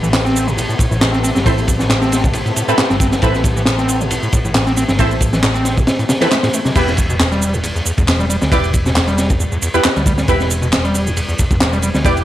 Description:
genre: breakbeat, breaks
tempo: 136 BPM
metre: 4/4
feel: swing 53% on 16ths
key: E minor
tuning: A4 = 441 Hz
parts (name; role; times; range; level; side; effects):
- muted studio string section; sustained chords; 0.0-6.7 s; C3 to B3; -25 LUFS; left 3 dB; sidechain pumping
- overdriven acid bass; riff; 0.0-12.1 s; E2 to C4; -20 LUFS; equal; analog delay
- hollow-body short-scale picked electric bass; bass; 0.0-12.2 s; E1 to D2; -19 LUFS; equal; none
- electronic shaker and handclaps; drums; 0.0-12.2 s; none; -22 LUFS; right 1 dB; none
- crunchy breakbeat drum kit; drums; 0.1-12.2 s; crash cymbal, kick drum, ride cymbal, snare drum; -17 LUFS; equal; none
- congas; percussion; 1.2-6.7 s; none; -32 LUFS; left 4 dB; none
- orchestra-hit-like synth stab; stabs; 1.5-12.2 s; B3 to D5; -19 LUFS; right 1 dB; built-in reverb, analog delay
room: light reverb, small room ambience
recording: dry, gritty hardware recording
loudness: -13 LUFS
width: side -13 dB against mid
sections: 0.0-6.8 A section; 6.8-12.2 A section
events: drop 0.0-6.8, 6.8-12.2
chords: 0.0 Amadd9; 6.8 Em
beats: 0.14 0.58 1.02 | 1.46 1.90 2.34 2.79 | 3.23 3.67 4.11 4.55 | 4.99 5.43 5.87 6.32 | 6.76 7.20 7.64 8.08 | 8.52 8.96 9.40 9.84 | 10.29 10.73 11.17 11.61 | 12.05

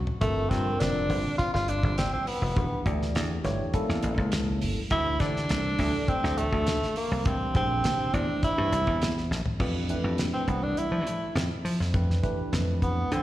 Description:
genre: electric jazz fusion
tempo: 102 BPM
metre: 4/4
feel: straight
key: F lydian from 9.6 s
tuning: A4 = 439 Hz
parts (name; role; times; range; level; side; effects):
- dry thumbed slap bass; bass; 0.0-13.2 s; E1 to F3; -28 LUFS; equal; none
- damped 70s drum kit; drums; 0.1-13.2 s; crash cymbal, hi-hat, kick drum, snare drum, toms; -30 LUFS; equal; none
- warm tenor saxophone; melody; 0.2-13.2 s; A3 to F4; -28 LUFS; equal; slapback echo, tape echo
- tine electric piano; accompaniment; 0.2-13.2 s; D3 to D5; -33 LUFS; equal; phaser, slapback echo
room: light reverb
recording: live gig heard through the venue's PA, recital hall reverb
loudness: -24 LUFS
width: side -14 dB against mid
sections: 0.0-9.6 A section; 9.6-13.2 B section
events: drum fill 0.0, 9.3; tenor saxophone solo 9.6-13.2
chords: 0.2 Gm7; 2.6 Em7; 3.7 A7b9; 4.9 D9sus4; 7.3 C13; 9.6 Fmaj9#11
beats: | 0.22 0.81 1.40 1.98 | 2.57 3.16 3.74 4.33 | 4.92 5.50 6.09 6.67 | 7.26 7.85 8.43 9.02 | 9.60 10.19 10.77 11.36 | 11.95 12.53 13.12

